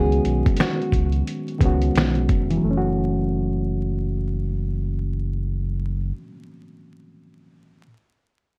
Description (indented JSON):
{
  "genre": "lo-fi hip hop",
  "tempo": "88 BPM",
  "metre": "4/4",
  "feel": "swing 63% on 16ths",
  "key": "F# dorian",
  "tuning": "A4 = 439 Hz",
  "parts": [
    { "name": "nylon-string guitar", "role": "melody", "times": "0.0-1.2 s", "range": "F#4 to G#4", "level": "-30 LUFS", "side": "equal", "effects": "tape echo" },
    { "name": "overdriven reed electric piano", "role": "accompaniment", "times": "0.0-7.9 s", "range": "D#3 to G#5", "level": "-28 LUFS", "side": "equal", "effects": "cassette tape" },
    { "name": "sub bass with octave", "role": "bass", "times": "0.0-6.1 s", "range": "E#1 to C#2", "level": "-26 LUFS", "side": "equal", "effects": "transformer saturation" },
    { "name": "trip hop sampler-style drum kit", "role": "drums", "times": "0.1-2.6 s", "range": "finger snaps, hi-hat, kick drum, snare drum", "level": "-23 LUFS", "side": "equal", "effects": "vintage 12-bit sampler grit" }
  ],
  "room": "little or no reverb",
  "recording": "worn, warbling old tape, cassette tape, vinyl crackle, warbly pitch drift",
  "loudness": "-23 LUFS",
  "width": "mono",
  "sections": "0.0-2.6 A section; 2.6-5.4 B section",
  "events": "none",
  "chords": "0.0 C#9sus4; 2.6 F#m7"
}